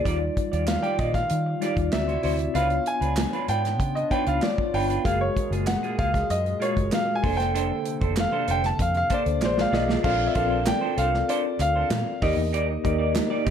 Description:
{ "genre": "polished 1980s jazz-funk pop", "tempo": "96 BPM", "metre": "4/4", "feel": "straight", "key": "Bb major", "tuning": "A4 = 440 Hz", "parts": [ { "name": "warm grand piano", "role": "melody", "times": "0.0-13.4 s", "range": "C5 to A5", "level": "-26 LUFS", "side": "left 1 dB", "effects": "none" }, { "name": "mellow tine electric piano", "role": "accompaniment", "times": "0.0-13.5 s", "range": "G3 to Eb5", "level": "-29 LUFS", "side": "left 2 dB", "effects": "medium stereo tremolo, lush chorus" }, { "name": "hollow soft pad", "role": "sustained chords", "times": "0.0-10.0 s", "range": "Bb2 to A4", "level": "-36 LUFS", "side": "right 1 dB", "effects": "chorus" }, { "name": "clean electric guitar", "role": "riff", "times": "0.0-13.5 s", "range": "Bb3 to D5", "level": "-32 LUFS", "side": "right 6 dB", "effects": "wide subtle chorus" }, { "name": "vintage muted fingered electric bass", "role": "bass", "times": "0.1-13.5 s", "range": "F1 to Eb3", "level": "-28 LUFS", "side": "equal", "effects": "none" }, { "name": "modern studio drum kit", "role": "drums", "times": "0.1-13.5 s", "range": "crash cymbal, hi-hat, kick drum, snare drum", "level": "-28 LUFS", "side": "right 1 dB", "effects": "gated reverb" }, { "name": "group handclap", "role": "percussion", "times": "0.7-13.3 s", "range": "none", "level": "-38 LUFS", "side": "right 6 dB", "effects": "none" } ], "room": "light reverb, small room ambience", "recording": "none", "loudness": "-22 LUFS", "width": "side -8 dB against mid", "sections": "0.0-10.0 A section; 10.0-13.5 B section", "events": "grand piano solo 0.0-10.0; drum fill 9.4-10.0", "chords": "0.1 Ebmaj9; 1.9 D9; 2.6 Db7b9; 5.0 Gbmaj9; 7.2 Bbmaj9/F; 9.4 Bb7; 10.0 Bbmaj9; 12.2 Ebmaj7" }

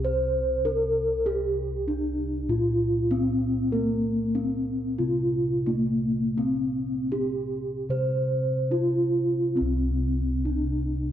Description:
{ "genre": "Javanese gamelan", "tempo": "68-98 BPM", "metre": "4/4", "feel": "straight", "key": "C slendro", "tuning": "A4 = 441 Hz", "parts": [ { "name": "gamelan-type bronze metallophone", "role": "melody", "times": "0.0-11.1 s", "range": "Bb3-40c to C5", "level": "-25 LUFS", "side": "equal", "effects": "none" }, { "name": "gamelan-type bossed gongs", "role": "bass", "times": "0.0-11.1 s", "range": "C2 to Bb4-40c", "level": "-28 LUFS", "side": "equal", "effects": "none" } ], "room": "moderate concert hall reverb, RT60 2.3 s", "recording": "dark, warm production", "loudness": "-23 LUFS", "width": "side -10 dB against mid", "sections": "0.0-9.6 A section; 9.6-11.1 B section", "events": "none", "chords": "none" }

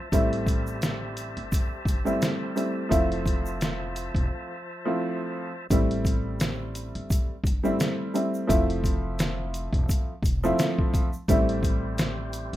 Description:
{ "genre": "hip hop, boom-bap hip-hop", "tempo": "86 BPM", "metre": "4/4", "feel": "swing 56% on 16ths", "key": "A minor", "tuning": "A4 = 440 Hz", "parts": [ { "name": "tonewheel organ", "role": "sustained chords", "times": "0.0-5.7, 11.3-12.6 s", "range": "F3 to A5", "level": "-37 LUFS", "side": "equal", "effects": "overdrive, fast rotary speaker, high-pass filter, low-pass filter" }, { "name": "warm upright piano", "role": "accompaniment", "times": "0.1-12.6 s", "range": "F3 to E4", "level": "-27 LUFS", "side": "equal", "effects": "high-pass filter, low-pass filter" }, { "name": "upright bass", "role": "bass", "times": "0.1-12.6 s", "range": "E1 to A1", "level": "-33 LUFS", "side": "equal", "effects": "none" }, { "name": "trip hop sampler-style drum kit", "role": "drums", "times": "0.1-12.6 s", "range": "hi-hat, kick drum, snare drum", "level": "-26 LUFS", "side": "equal", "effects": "none" }, { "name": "tube shaker", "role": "percussion", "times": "0.1-12.5 s", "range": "none", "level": "-44 LUFS", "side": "right 3 dB", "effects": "none" } ], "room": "little or no reverb", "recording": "rough home demo mix", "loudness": "-24 LUFS", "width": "side -14 dB against mid", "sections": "0.0-5.7 A section; 5.7-12.6 B section", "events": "break 4.3-5.7", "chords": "0.1 Am7; 2.9 Fmaj7; 5.7 Am7; 8.5 Fmaj7; 11.3 Am7" }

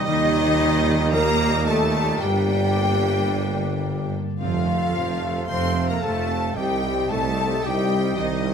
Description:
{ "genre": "cinematic, heroic adventure film score", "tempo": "111 BPM", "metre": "4/4", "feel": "straight", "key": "F mixolydian", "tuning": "A4 = 439 Hz", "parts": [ { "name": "bright symphonic violin section", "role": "melody", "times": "0.0-8.5 s", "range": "Eb5 to C6", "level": "-30 LUFS", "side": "left 4 dB", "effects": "none" }, { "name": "clear clarinet", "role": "second line", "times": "0.0-8.5 s", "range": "Eb4 to C5", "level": "-32 LUFS", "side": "right 1 dB", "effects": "none" }, { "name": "flute section", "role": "second line", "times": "0.0-8.5 s", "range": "Eb5 to C6", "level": "-32 LUFS", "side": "left 4 dB", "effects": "none" }, { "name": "rich symphonic violin section", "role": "second line", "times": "0.0-8.5 s", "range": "Eb5 to C6", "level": "-32 LUFS", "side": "left 3 dB", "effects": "none" }, { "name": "clear trombone section", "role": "sustained chords", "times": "0.0-8.5 s", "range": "Bb2 to A3", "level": "-33 LUFS", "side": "right 7 dB", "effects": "none" }, { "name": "dark French horn section", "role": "sustained chords", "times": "0.0-8.5 s", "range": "Eb4 to C5", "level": "-28 LUFS", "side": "left 4 dB", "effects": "none" }, { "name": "concert harp", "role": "arpeggios", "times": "0.0-8.5 s", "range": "F2 to Eb5", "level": "-32 LUFS", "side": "left 9 dB", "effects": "none" }, { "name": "dark trumpet", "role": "stabs", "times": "0.0-8.5 s", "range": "D5 to F5", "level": "-31 LUFS", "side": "right 2 dB", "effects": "none" }, { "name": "rich studio cello section", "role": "bass", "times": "0.0-8.5 s", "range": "Eb3 to C4", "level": "-29 LUFS", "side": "right 2 dB", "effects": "none" }, { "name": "rich symphonic viola section", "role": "accompaniment", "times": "0.1-8.5 s", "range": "Eb3 to A4", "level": "-33 LUFS", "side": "right 2 dB", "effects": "none" }, { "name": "warm symphonic double bass section", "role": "bass", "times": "0.1-8.5 s", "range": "C2 to G2", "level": "-27 LUFS", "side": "right 4 dB", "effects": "none" }, { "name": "warm tuba", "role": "bass", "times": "0.1-8.5 s", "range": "F1 to Eb2", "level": "-27 LUFS", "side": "right 4 dB", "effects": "none" } ], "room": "moderate recital hall reverb, RT60 1.2 s", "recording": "none", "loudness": "-19 LUFS", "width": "side -7 dB against mid", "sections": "0.0-8.5 A section", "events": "none", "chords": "0.1 Eb; 2.2 Gm; 4.4 F; 6.6 Cm" }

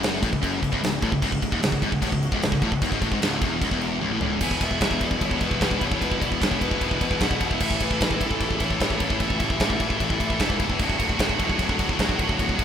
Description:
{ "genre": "heavy metal", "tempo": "150 BPM", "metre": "4/4", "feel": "straight", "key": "unclear", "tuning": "A4 = 440 Hz", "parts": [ { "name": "muted studio string section", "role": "sustained chords", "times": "0.0-12.6 s", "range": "B2 to F#4", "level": "-38 LUFS", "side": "right 2 dB", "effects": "none" }, { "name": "distorted electric guitar", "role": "riff", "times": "0.0-12.6 s", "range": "C#2 to E3", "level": "-27 LUFS", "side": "left 9 dB", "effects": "overdrive" }, { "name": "heavy high-gain guitar", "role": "riff", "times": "0.0-12.6 s", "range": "C#2 to A4", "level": "-35 LUFS", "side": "equal", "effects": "none" }, { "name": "high-gain distorted guitar", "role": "riff", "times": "0.0-12.6 s", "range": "C#2 to A4", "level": "-29 LUFS", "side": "right 11 dB", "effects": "distortion" }, { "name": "fuzz picked electric bass", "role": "bass", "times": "0.0-12.6 s", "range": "C#1 to B1", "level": "-31 LUFS", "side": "right 1 dB", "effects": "overdrive" }, { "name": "big rock drum kit", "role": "drums", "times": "0.0-12.6 s", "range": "crash cymbal, kick drum, ride cymbal, snare drum, toms", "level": "-25 LUFS", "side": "right 1 dB", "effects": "none" }, { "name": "high-gain lead guitar", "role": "melody", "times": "4.4-10.6 s", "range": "A4 to G#5", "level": "-33 LUFS", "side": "left 1 dB", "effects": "distortion" } ], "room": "little or no reverb", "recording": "rough home demo mix", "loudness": "-21 LUFS", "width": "side -8 dB against mid", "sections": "0.0-4.4 A section; 4.4-12.6 B section", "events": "drum fill 4.0-4.4", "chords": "0.0 C#m; 4.4 E; 7.6 A; 10.8 D" }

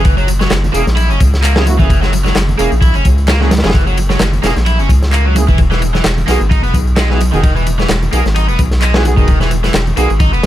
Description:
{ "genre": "breakbeat, breaks", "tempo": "130 BPM", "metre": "4/4", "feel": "swing 56% on 16ths", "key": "F# mixolydian", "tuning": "A4 = 439 Hz", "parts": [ { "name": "cranked stack guitar", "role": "riff", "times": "0.0-10.4 s", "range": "D#3 to E4", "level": "-18 LUFS", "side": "equal", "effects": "overdrive, tube saturation, ping-pong delay" }, { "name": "saturated sub bass", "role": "bass", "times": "0.0-10.5 s", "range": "E1 to C#2", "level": "-14 LUFS", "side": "equal", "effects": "tube saturation" }, { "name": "crunchy breakbeat drum kit", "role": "drums", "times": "0.0-10.5 s", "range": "kick drum, ride cymbal, snare drum", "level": "-14 LUFS", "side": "equal", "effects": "none" }, { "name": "electronic tambourine and handclaps", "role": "drums", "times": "0.0-10.5 s", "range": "none", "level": "-25 LUFS", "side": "left 1 dB", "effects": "none" }, { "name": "bongos and congas", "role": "percussion", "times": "0.3-10.3 s", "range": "none", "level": "-24 LUFS", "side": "right 3 dB", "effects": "none" }, { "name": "warm brass ensemble", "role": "stabs", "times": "0.7-10.1 s", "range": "A#3 to G#4", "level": "-22 LUFS", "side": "right 2 dB", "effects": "ping-pong delay" } ], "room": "small room reverb", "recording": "none", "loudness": "-10 LUFS", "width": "side -13 dB against mid", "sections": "0.0-10.5 A section", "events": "none", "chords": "0.0 F#7; 5.6 Emaj7" }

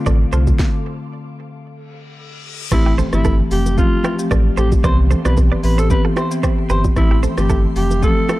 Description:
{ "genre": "afrobeats", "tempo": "113 BPM", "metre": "4/4", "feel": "swing 55% on 16ths", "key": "unclear", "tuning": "A4 = 439 Hz", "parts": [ { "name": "marimba with medium mallets", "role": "accompaniment", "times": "0.0-8.4 s", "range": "D3 to G4", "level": "-21 LUFS", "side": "left 2 dB", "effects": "none" }, { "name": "ethereal airy pad", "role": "sustained chords", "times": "0.0-8.4 s", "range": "G4 to D6", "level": "-34 LUFS", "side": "left 2 dB", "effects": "ensemble chorus, built-in reverb, phaser, sidechain pumping" }, { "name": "direct-recorded clean electric guitar", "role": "riff", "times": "0.1-8.4 s", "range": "E4 to D5", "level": "-28 LUFS", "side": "right 7 dB", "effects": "spring reverb, tape echo" }, { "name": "sub bass with octave", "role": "bass", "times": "0.1-8.1 s", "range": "F1 to C2", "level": "-16 LUFS", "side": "equal", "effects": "none" }, { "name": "afro-pop drum kit", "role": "drums", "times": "0.1-8.4 s", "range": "crash cymbal, hi-hat, kick drum, rim click, shaker, snare drum", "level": "-18 LUFS", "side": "equal", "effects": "none" }, { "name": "bongos and congas", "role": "percussion", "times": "0.1-8.4 s", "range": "none", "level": "-27 LUFS", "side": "right 6 dB", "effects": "none" }, { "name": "reverse cymbal and impact", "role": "sound effects", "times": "1.9-4.8 s", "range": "none", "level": "-33 LUFS", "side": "left 1 dB", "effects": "none" }, { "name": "growling alto saxophone", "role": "melody", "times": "2.7-8.4 s", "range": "E4 to C5", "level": "-23 LUFS", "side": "equal", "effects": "none" } ], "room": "little or no reverb", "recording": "dark, warm production", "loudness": "-14 LUFS", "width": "side -17 dB against mid", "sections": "0.0-2.7 A section; 2.7-8.4 B section", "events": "stop 0.6-2.7; reverse cymbal 1.9-2.7; impact 2.7-4.8", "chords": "0.0 F6; 0.6 N.C.; 2.7 Am7; 3.5 Fadd9; 4.8 Cmaj7; 7.0 Am7; 7.8 Fadd9" }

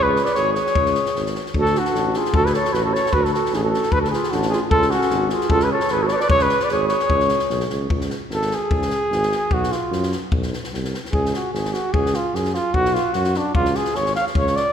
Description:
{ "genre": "balkan folk, Balkan brass band", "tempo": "150 BPM", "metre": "2/4", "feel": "swing 54% on 16ths", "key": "C# phrygian dominant", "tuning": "A4 = 440 Hz", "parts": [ { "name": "dark cornet", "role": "melody", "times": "0.0-14.7 s", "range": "D4 to E#5", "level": "-20 LUFS", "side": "equal", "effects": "none" }, { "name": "dark clarinet", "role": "second line", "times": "0.0-7.7 s", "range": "C#4 to B4", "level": "-24 LUFS", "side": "right 3 dB", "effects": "none" }, { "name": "mellow tuba", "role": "bass", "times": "0.0-14.6 s", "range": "G#1 to F#2", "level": "-24 LUFS", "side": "equal", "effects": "none" }, { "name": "compact cocktail drum kit", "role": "percussion", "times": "0.2-14.6 s", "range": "kick drum, snare drum", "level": "-26 LUFS", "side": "left 1 dB", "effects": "none" } ], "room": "wet concert hall reverb, RT60 2.0 s", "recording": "recorded in a church or concert hall", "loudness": "-18 LUFS", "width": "side -8 dB against mid", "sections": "0.0-1.5 A section; 1.5-7.9 A section; 7.9-14.7 B section", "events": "cornet solo 7.9-14.7", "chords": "0.0 C#5; 1.5 D; 4.7 C#5; 9.5 B5; 11.1 C#5; 12.8 B5; 13.6 C#5" }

